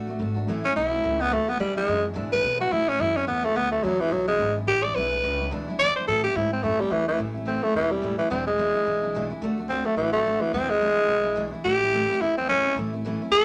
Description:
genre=rockabilly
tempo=215 BPM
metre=4/4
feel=swing 58% on 8ths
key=A major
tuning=A4 = 439 Hz
part: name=picked steel-string acoustic guitar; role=accompaniment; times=0.0-13.4 s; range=E2 to F#4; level=-34 LUFS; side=equal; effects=none
part: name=upright bass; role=bass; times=0.0-13.4 s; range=E1 to B2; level=-37 LUFS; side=equal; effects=none
part: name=growling tenor saxophone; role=melody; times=0.6-13.4 s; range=E3 to D5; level=-24 LUFS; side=equal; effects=none
room=moderate small room reverb, RT60 0.5 s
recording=none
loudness=-24 LUFS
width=mono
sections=0.0-7.2 A section; 7.2-13.4 B section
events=none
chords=0.5 A; 1.6 E7; 2.7 A; 3.8 E7; 6.1 A; 8.3 E7; 9.4 D; 10.5 E7; 11.6 A

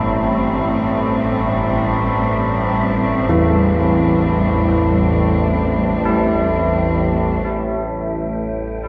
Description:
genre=dark ambient drone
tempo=free time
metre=none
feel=none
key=A minor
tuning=A4 = 440 Hz
part: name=rich studio cello section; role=sustained chords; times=0.0-7.4 s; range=A2 to D4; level=-24 LUFS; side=equal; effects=none
part: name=old church bells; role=arpeggios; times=0.0-8.9 s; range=G2 to E4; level=-22 LUFS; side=equal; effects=dub echo
part: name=overtone-sweeping drone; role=drone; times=0.0-8.9 s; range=A1 to A2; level=-21 LUFS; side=equal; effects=chorus, built-in reverb
part: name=wind-like tuned noise texture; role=texture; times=0.0-8.9 s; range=E5 to G5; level=-31 LUFS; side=equal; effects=built-in reverb
room=wet echo chamber reverb, RT60 2.0 s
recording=echo-heavy mix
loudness=-17 LUFS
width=mono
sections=0.0-7.4 A section; 7.4-8.9 B section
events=fade-in on cello section 0.0-7.4; fade-out on synth texture 0.0-7.4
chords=0.0 Am7; 7.4 A5

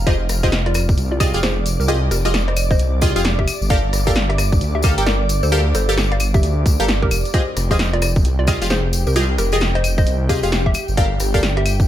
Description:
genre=UK garage, two-step garage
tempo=132 BPM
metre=4/4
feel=swing 62% on 16ths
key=F dorian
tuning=A4 = 439 Hz
part: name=ethereal airy pad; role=sustained chords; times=0.0-11.9 s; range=G4 to D6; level=-30 LUFS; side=right 2 dB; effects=ensemble chorus, built-in reverb, sidechain pumping
part: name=dark detuned saw bass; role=bass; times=0.0-11.9 s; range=F1 to D2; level=-19 LUFS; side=equal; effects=none
part: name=hollow square pluck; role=melody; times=0.1-11.8 s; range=F4 to F5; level=-26 LUFS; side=equal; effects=chorus, cassette tape, digital delay
part: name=punchy chord stab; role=stabs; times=0.1-11.4 s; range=F4 to G5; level=-22 LUFS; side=equal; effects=chorus, dub echo
part: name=electronic kick drum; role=drums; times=0.1-11.9 s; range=none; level=-19 LUFS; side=equal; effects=none
part: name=punchy analog drum machine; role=drums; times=0.1-11.8 s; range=claves, hi-hat, rim click, snare drum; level=-23 LUFS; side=equal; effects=none
part: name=tambourine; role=percussion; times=0.1-11.9 s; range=none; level=-30 LUFS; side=left 5 dB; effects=none
room=digital ambience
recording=none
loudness=-15 LUFS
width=side -12 dB against mid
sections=0.0-11.9 A section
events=none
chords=0.1 Fm9; 3.5 Gm9; 7.3 Fm9; 10.7 Gm9

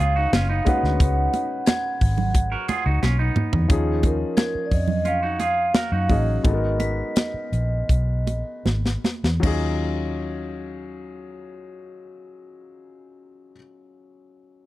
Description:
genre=lush 1970s-style soul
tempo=76-89 BPM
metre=4/4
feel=straight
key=Eb minor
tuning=A4 = 441 Hz
part: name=vibraphone with soft mallets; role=melody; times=0.0-8.6 s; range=Ab4 to Gb5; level=-26 LUFS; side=right 2 dB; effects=none
part: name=warm grand piano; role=accompaniment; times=0.0-14.7 s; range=F3 to F5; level=-30 LUFS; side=left 4 dB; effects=none
part: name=clean electric guitar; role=riff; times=0.0-6.4 s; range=Cb4 to Bb4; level=-29 LUFS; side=right 3 dB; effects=none
part: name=vintage muted fingered electric bass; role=bass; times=0.0-13.5 s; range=Gb1 to Gb2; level=-23 LUFS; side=equal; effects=none
part: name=tight funk drum kit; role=drums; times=0.0-9.6 s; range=crash cymbal, hi-hat, kick drum, snare drum, toms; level=-21 LUFS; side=equal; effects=none
part: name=congas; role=percussion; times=0.3-9.8 s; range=none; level=-29 LUFS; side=right 5 dB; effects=none
part: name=glockenspiel with brass mallets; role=texture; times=1.7-13.5 s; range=Ab6 to Cb7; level=-40 LUFS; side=left 7 dB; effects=stereo widening
room=small room ambience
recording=dry, close 1970s-style studio recording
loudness=-20 LUFS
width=side -16 dB against mid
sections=0.0-3.7 A section; 3.7-9.4 B section; 9.4-12.6 C section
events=drum fill 3.0-3.7, 8.7-9.4; slowing down 3.7-9.4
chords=0.0 Db9sus4; 3.7 Ebm11; 6.4 Abm9; 9.4 Ebm11

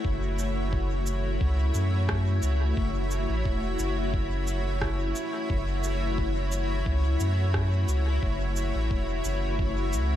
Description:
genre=ambient dub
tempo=88 BPM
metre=4/4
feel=swing 54% on 16ths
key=F# minor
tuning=A4 = 441 Hz
part: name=granular cloud pad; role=sustained chords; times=0.0-10.2 s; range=A3 to E5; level=-30 LUFS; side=left 1 dB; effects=built-in reverb
part: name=warm sub bass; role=bass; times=0.0-10.2 s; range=E1 to F#2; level=-27 LUFS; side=equal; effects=none
part: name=electronic kick drum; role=drums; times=0.0-9.7 s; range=none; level=-30 LUFS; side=equal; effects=none
part: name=electronic cabasa and rim click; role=drums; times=0.4-10.1 s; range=none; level=-38 LUFS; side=right 2 dB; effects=dub echo
room=little or no reverb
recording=lossy compression artefacts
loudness=-25 LUFS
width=side -12 dB against mid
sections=0.0-10.2 A section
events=none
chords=0.0 F#m7

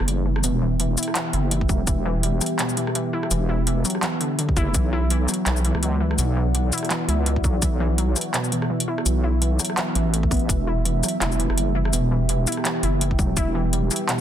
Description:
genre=half-time drum and bass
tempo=167 BPM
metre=4/4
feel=swing 56% on 16ths, half-time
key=E minor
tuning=A4 = 440 Hz
part: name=deep dark ambient pad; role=sustained chords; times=0.0-14.2 s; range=B3 to G5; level=-28 LUFS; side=right 3 dB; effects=chorus, built-in reverb, vintage 12-bit sampler grit, sidechain pumping
part: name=warbly dusty pluck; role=arpeggios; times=0.0-14.2 s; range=B2 to E4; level=-26 LUFS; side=left 2 dB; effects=chorus, digital delay
part: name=deep soft wobble bass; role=bass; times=0.0-13.9 s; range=E1 to C#2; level=-22 LUFS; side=equal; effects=chorus, tube saturation
part: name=drum and bass drum kit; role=drums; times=0.0-14.2 s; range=handclaps, hi-hat, rim click, shaker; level=-26 LUFS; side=equal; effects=none
part: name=electronic kick drum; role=drums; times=1.6-2.0, 4.5-4.8, 7.4-7.7, 10.2-10.6, 13.1-13.4 s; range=none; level=-22 LUFS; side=equal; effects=none
room=little or no reverb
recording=dense, heavily limited modern master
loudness=-20 LUFS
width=side -10 dB against mid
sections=0.0-14.2 A section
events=none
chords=0.0 Em; 4.7 Bm; 10.5 Em

